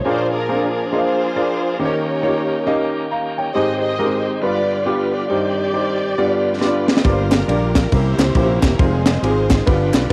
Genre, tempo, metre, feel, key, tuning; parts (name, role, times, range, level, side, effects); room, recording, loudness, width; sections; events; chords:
uptempo gospel; 137 BPM; 4/4; swing 62% on 8ths; A4 = 440 Hz
muted studio string section; melody; 0.0-9.7 s; C4 to Eb5; -25 LUFS; equal; cassette tape
bright tonewheel organ; sustained chords; 0.0-10.1 s; G2 to Ab4; -29 LUFS; equal; fast rotary speaker, overdrive, cassette tape
clear concert grand piano; accompaniment; 0.1-10.1 s; G2 to Bb5; -22 LUFS; equal; cassette tape
tight funk drum kit; drums; 6.6-10.1 s; kick drum, ride cymbal, snare drum; -20 LUFS; equal; cassette tape
fingered electric bass; bass; 7.0-10.1 s; E1 to Db2; -22 LUFS; equal
group handclap; percussion; 7.3-10.0 s; -35 LUFS; equal
moderate spring reverb, RT60 1.6 s, studio reverb; home recording on cassette; -18 LUFS; mono
0.1-10.1 A section
drum fill 6.6-7.0
0.1 Bb7; 1.8 Eb7; 3.5 Abmaj7; 4.4 G7; 5.3 Cm/G; 6.2 G7; 7.0 Gm7; 7.9 C7b9; 8.8 Fm7